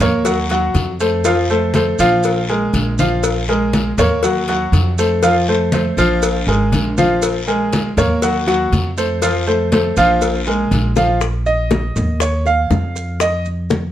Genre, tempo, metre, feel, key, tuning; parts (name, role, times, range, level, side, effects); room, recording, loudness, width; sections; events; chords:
latin, Cuban son and guajira; 120 BPM; 4/4; straight; A4 = 440 Hz
clear concert grand piano; arpeggios; 0.0-13.5 s; F3 to Gb5; -16 LUFS; equal
upright bass; bass; 0.0-13.9 s; Ab1 to F2; -20 LUFS; equal
congas; percussion; 0.0-13.9 s; -21 LUFS; left 1 dB
cowbell and bongos; percussion; 0.0-13.9 s; -23 LUFS; left 7 dB
guiro; percussion; 0.0-11.2 s; -30 LUFS; left 4 dB
maracas; percussion; 0.0-13.9 s; -30 LUFS; right 7 dB
light reverb; dark, warm production; -14 LUFS; side -11 dB against mid
0.0-11.2 A section; 11.2-13.9 B section
drum fill 11.0; grand piano solo 11.2-13.9
0.3 Ebm; 1.3 F; 2.2 Bb7(no3); 4.2 Ebm; 5.2 F; 6.2 Bb7(no3); 8.2 Ebm; 9.2 F; 10.2 Bb5; 11.2 Bbsus4; 12.2 Dbadd9/Eb; 13.2 Bbsus4 (rootless)